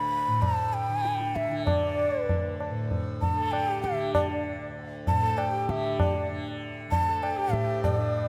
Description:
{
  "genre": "indian classical, Hindustani",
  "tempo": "97 BPM",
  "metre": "5/4",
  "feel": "straight",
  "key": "unclear",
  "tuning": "A4 = 442 Hz",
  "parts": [
    { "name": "breathy bansuri", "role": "melody", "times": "0.0-8.3 s", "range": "D5 to B5-20c", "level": "-31 LUFS", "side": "equal", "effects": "tape echo" },
    { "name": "tanpura", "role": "drone", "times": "0.0-8.3 s", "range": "D2 to D3", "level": "-35 LUFS", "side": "equal", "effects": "none" },
    { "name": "tabla", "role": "percussion", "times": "0.4-8.1 s", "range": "none", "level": "-32 LUFS", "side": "equal", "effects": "none" },
    { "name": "rich sarangi", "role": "second line", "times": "1.8-8.3 s", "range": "D4 to A4", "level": "-37 LUFS", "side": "equal", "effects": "none" }
  ],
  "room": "light reverb",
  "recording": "close, detailed microphones",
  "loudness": "-28 LUFS",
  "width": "mono",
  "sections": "0.0-7.8 A section",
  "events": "none",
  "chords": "none"
}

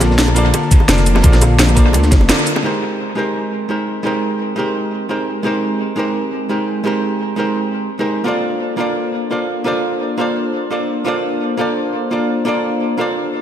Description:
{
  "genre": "liquid drum and bass",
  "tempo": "171 BPM",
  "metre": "4/4",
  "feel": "straight",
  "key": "unclear",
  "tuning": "A4 = 445 Hz",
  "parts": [
    { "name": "electric guitar at the edge of break-up", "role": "melody", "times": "0.0-2.3 s", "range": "none", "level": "barely audible", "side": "none", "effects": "none" },
    { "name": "archtop guitar, miked and amplified", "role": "accompaniment", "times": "0.0-13.4 s", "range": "Ab3 to D5", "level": "-18 LUFS", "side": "right 1 dB", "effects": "tape echo" },
    { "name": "warm analog pad", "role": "sustained chords", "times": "0.0-13.4 s", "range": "D3 to A5", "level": "-23 LUFS", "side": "left 3 dB", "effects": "chorus, sidechain pumping" },
    { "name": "dark detuned saw bass", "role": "bass", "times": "0.0-2.3 s", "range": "F1 to D2", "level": "-13 LUFS", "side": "equal", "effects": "none" },
    { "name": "crunchy breakbeat drum kit", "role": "drums", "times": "0.0-2.6 s", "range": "ride cymbal, snare drum", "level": "-25 LUFS", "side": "equal", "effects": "none" },
    { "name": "drum and bass drum kit", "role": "drums", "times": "0.0-13.4 s", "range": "crash cymbal, hi-hat, shaker, snare drum", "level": "-18 LUFS", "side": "equal", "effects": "overdrive, low-pass filter on snare, low-pass filter on hats, low-pass filter on perc, low-pass filter on cymbals, low-pass filter on room, dub echo" },
    { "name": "bongos", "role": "percussion", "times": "0.0-2.6 s", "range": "none", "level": "-26 LUFS", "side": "right 1 dB", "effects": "none" },
    { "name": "electronic kick drum", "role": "drums", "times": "0.7-2.2 s", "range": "none", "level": "-11 LUFS", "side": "equal", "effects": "none" }
  ],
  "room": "moderate echo chamber reverb, RT60 2.3 s",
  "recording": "echo-heavy mix",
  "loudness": "-14 LUFS",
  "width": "side -10 dB against mid",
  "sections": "0.0-2.6 A section; 2.6-13.4 B section",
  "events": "drop 0.0-2.6; break 2.3-2.6; band accent 2.3; filter sweep on analog synth pad 2.6-13.4",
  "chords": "0.0 Bbmaj9; 2.6 Abmaj9; 8.3 Bbmaj9"
}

